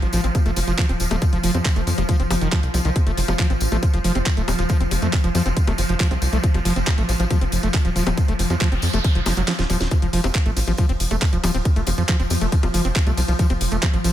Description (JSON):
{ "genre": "psychedelic trance", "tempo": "138 BPM", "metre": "4/4", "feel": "straight", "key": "F major", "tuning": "A4 = 439 Hz", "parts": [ { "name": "swarming drone", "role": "sustained chords", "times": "0.0-14.1 s", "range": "F3", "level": "-27 LUFS", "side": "equal", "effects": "built-in reverb, sidechain pumping" }, { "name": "overdriven acid bass", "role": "riff", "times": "0.0-14.1 s", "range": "Eb3 to C4", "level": "-26 LUFS", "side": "moving between left 3 dB and right 3 dB", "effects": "auto-pan, sidechain pumping, analog delay" }, { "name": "tight sequencer bass", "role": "bass", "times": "0.0-14.1 s", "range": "Eb1 to F2", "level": "-22 LUFS", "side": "equal", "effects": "none" }, { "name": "garage drum kit", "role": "drums", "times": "0.0-14.1 s", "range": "bongos, handclaps, hi-hat, ride cymbal, snare drum", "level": "-27 LUFS", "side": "left 1 dB", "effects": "none" }, { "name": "tambourine", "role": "percussion", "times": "0.0-14.1 s", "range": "none", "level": "-34 LUFS", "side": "left 3 dB", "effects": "none" }, { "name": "electronic kick drum", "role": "drums", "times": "0.3-13.9 s", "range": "none", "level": "-19 LUFS", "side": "equal", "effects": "none" }, { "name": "noise sweep", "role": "sound effects", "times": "8.4-9.9 s", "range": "none", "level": "-32 LUFS", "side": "right 3 dB", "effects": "none" } ], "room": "little or no reverb", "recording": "none", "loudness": "-18 LUFS", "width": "side -12 dB against mid", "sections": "0.0-14.1 A section", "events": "noise sweep 8.4-9.9; drum fill 9.3-9.9; kick drops out 9.5-9.9", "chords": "0.0 F5" }